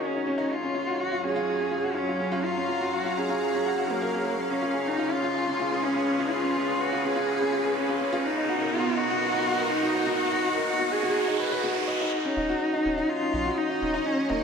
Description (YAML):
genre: piano and strings electronica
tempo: 124 BPM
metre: 4/4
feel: straight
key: Eb minor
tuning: A4 = 439 Hz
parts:
  - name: rich cello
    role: melody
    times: 0.0-14.4 s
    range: Bb3 to Ab4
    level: -27 LUFS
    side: equal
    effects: low-pass filter
  - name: lush unison pad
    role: sustained chords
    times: 0.0-14.4 s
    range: Gb3 to Bb5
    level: -32 LUFS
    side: equal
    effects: chorus, phaser
  - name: bright upright piano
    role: riff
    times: 0.0-14.4 s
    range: Db4 to Gb5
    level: -29 LUFS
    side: left 1 dB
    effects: none
  - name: riser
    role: sound effects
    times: 0.4-12.1 s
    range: none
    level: -36 LUFS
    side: right 1 dB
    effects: none
  - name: warm sub bass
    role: bass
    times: 0.3-14.4 s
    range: Eb1 to Db2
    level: -37 LUFS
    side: equal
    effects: high-pass filter
room: wet huge ambient reverb, RT60 4.6 s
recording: none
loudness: -24 LUFS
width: side -6 dB against mid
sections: 0.0-12.1 A section; 12.1-14.4 B section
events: build-up 0.0-12.1; riser 0.4-12.1; drop 12.1-14.4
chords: 0.0 Ebm7; 0.5 Gbmaj7; 4.4 Db7; 8.3 Bmaj7; 12.1 Ebm7